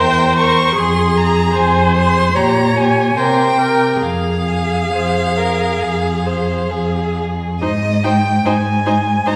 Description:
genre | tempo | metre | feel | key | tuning
classical, slow romantic movement for string quartet | 65-77 BPM | 4/4 | rubato | F minor | A4 = 440 Hz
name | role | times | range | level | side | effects
rich violin | melody | 0.0-9.4 s | Eb5 to Db6 | -21 LUFS | equal | none
rich violin | second line | 0.0-9.3 s | G4 to C5 | -24 LUFS | equal | none
rich viola | accompaniment | 0.0-9.3 s | Eb4 to Db5 | -22 LUFS | equal | none
warm cello | bass | 0.0-9.4 s | E2 to C3 | -20 LUFS | equal | none
room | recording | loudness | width
wet recital hall reverb, RT60 1.5 s | recorded in a church or concert hall | -15 LUFS | mono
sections
0.0-7.6 A section; 7.6-9.4 B section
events
none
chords
0.0 C7/E; 0.8 Fm; 2.4 Gdim/Bb; 3.2 C5; 4.0 Fm; 7.6 Ab

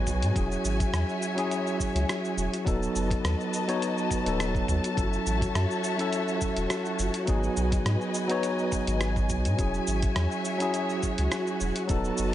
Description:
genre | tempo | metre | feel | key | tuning
sunset chillout | 104 BPM | 4/4 | swing 53% on 16ths | unclear | A4 = 441 Hz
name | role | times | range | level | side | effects
barky tine electric piano | accompaniment | 0.0-12.3 s | F#3 to C#5 | -29 LUFS | equal | auto-pan, ping-pong delay
dark symphonic string section | sustained chords | 0.0-12.3 s | F#4 to A5 | -32 LUFS | left 2 dB | none
warm sub bass | bass | 0.0-12.3 s | D#1 to G#2 | -28 LUFS | equal | none
dusty soul sampler-style drum kit | drums | 0.1-12.3 s | cabasa, hi-hat, rim click | -35 LUFS | equal | none
electronic kick drum | drums | 0.1-12.0 s | none | -29 LUFS | equal | none
room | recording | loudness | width
light reverb | nothing above 10.3 kHz | -25 LUFS | side -12 dB against mid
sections
0.0-12.3 A section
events
none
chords
0.4 E69; 2.7 B7/D#; 5.0 F#m7; 7.3 G#m7; 9.6 E69

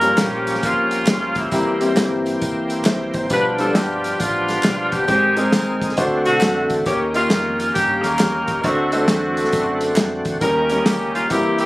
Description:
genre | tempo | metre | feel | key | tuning
uptempo gospel | 135 BPM | 4/4 | swing 64% on 8ths | unclear | A4 = 439 Hz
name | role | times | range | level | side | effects
edgy saxophone section | melody | 0.0-11.7 s | G3 to B4 | -20 LUFS | equal | none
bright concert grand piano | accompaniment | 0.0-11.7 s | G2 to E5 | -21 LUFS | left 1 dB | none
bright tonewheel organ | sustained chords | 0.0-11.7 s | D3 to Ab4 | -23 LUFS | right 1 dB | slow rotary speaker, overdrive, chorus vibrato
fingered electric bass | bass | 0.0-11.7 s | G1 to G2 | -33 LUFS | equal | none
warm soul drum kit | drums | 0.0-11.7 s | hi-hat, kick drum, snare drum | -21 LUFS | equal | none
tambourine and handclaps | percussion | 0.0-11.7 s | none | -33 LUFS | right 1 dB | none
room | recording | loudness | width
light reverb | recorded on a phone in the room, studio ambience, compression | -16 LUFS | side -19 dB against mid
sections
0.0-11.7 A section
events
none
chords
0.0 Gm7b5; 1.5 C7; 3.3 G7; 5.1 Ab; 6.0 D7; 6.9 Eb7; 8.6 D7; 10.4 Eb7

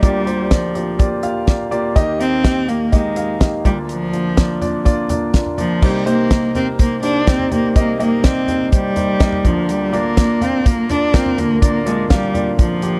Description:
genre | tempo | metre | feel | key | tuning
piano-driven pop | 124 BPM | 4/4 | straight | unclear | A4 = 440 Hz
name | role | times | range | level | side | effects
warm cello | melody | 0.0-13.0 s | F3 to D4 | -21 LUFS | equal | slapback echo
warm concert grand piano | accompaniment | 0.0-13.0 s | C2 to F5 | -22 LUFS | equal | none
damped 70s drum kit | drums | 0.0-12.9 s | crash cymbal, hi-hat, kick drum, snare drum, toms | -18 LUFS | equal | none
room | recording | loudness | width
light reverb | dry, close 1970s-style studio recording | -17 LUFS | mono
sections
0.0-5.8 A section; 5.8-13.0 B section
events
none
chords
0.0 Gm7/D; 2.0 Eb; 3.7 Bb/D; 5.8 Cm7; 9.4 Bb/D

